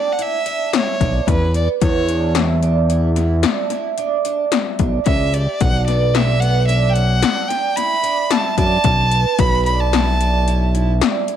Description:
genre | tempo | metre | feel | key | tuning
progressive instrumental, band music in an uneven meter | 111 BPM | 7/4 | straight | B minor | A4 = 439 Hz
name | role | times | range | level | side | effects
clear violin | melody | 0.0-10.9 s | B4 to B5 | -20 LUFS | right 1 dB | none
picked twelve-string acoustic guitar | arpeggios | 0.0-11.4 s | B3 to G4 | -22 LUFS | right 8 dB | none
80s electronic pad drums | drums | 0.2-11.4 s | hi-hat, kick drum, snare drum | -20 LUFS | left 6 dB | overdrive
fat analog bass | bass | 1.0-11.0 s | B1 to F#2 | -17 LUFS | equal | none
room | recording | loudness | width
moderate plate reverb, RT60 2.0 s | 1960s-style stereo with parts hard left and right | -15 LUFS | side -10 dB against mid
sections
0.0-11.4 A section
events
none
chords
0.0 E7(no3); 5.6 Bm7

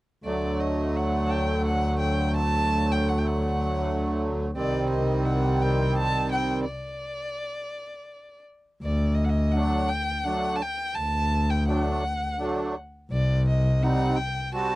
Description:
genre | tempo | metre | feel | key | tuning
klezmer | 84 BPM | 3/4 | straight | unclear | A4 = 440 Hz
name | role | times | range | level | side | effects
dark violin | melody | 0.2-14.8 s | D5 to A5 | -30 LUFS | equal | none
musette accordion | accompaniment | 0.2-14.8 s | D3 to F#4 | -27 LUFS | right 2 dB | none
clear double bass | bass | 0.3-14.4 s | C2 to D2 | -26 LUFS | equal | none
room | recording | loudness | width
light reverb | dry, close 1970s-style studio recording | -23 LUFS | side -18 dB against mid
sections
0.2-8.8 A section; 8.8-14.8 A section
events
stop 6.7-8.8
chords
0.2 D; 4.5 Cm; 6.7 N.C.; 8.8 D; 13.1 Cm

